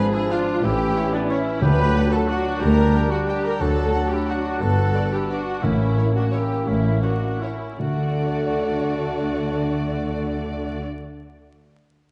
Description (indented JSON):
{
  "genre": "classical, orchestral ballroom waltz",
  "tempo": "151-193 BPM",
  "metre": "3/4",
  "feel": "rubato",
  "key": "D major",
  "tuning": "A4 = 440 Hz",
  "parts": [
    { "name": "rich studio violin section", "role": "melody", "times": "0.0-10.8 s", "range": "C#5 to G5", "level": "-38 LUFS", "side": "equal", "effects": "none" },
    { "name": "bright baroque flute", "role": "second line", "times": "0.0-10.8 s", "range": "D5 to B5", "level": "-35 LUFS", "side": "equal", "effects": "none" },
    { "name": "mellow cor anglais", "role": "second line", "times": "0.0-10.8 s", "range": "B3 to G#4", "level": "-34 LUFS", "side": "equal", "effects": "none" },
    { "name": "rich studio violin section", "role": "second line", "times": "0.0-10.8 s", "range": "D4 to B4", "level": "-33 LUFS", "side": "equal", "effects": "none" },
    { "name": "warm clarinet", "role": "second line", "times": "0.0-10.8 s", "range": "C#4 to D4", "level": "-33 LUFS", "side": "equal", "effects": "none" },
    { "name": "dark bassoon", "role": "accompaniment", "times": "0.0-10.8 s", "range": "E3 to B3", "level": "-31 LUFS", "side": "equal", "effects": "none" },
    { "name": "rich studio viola section", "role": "accompaniment", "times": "0.0-10.8 s", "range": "A3 to B4", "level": "-33 LUFS", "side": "equal", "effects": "none" },
    { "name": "mellow French horn section", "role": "sustained chords", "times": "0.0-10.8 s", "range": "C#4 to B4", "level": "-34 LUFS", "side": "equal", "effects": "none" },
    { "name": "rich studio double bass section", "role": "bass", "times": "0.6-10.8 s", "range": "G1 to D2", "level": "-29 LUFS", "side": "equal", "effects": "none" },
    { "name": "warm studio cello section", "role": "bass", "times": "0.6-10.8 s", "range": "D2 to D3", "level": "-28 LUFS", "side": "equal", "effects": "none" },
    { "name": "timpani", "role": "percussion", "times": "1.6-2.1, 5.6-11.2 s", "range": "A2 to D3", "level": "-28 LUFS", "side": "equal", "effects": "none" }
  ],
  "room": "moderate concert hall reverb, RT60 2.0 s",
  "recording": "dark, warm production, vinyl crackle, nothing above 10.8 kHz",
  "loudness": "-22 LUFS",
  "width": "mono",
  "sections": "0.0-7.8 A section; 7.8-10.1 B section",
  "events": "slowing down 5.1-7.8",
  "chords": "0.0 G#dim7; 0.6 A7; 1.6 D; 2.6 Gm/D; 3.6 D; 4.6 G; 5.6 A7b9; 7.8 D"
}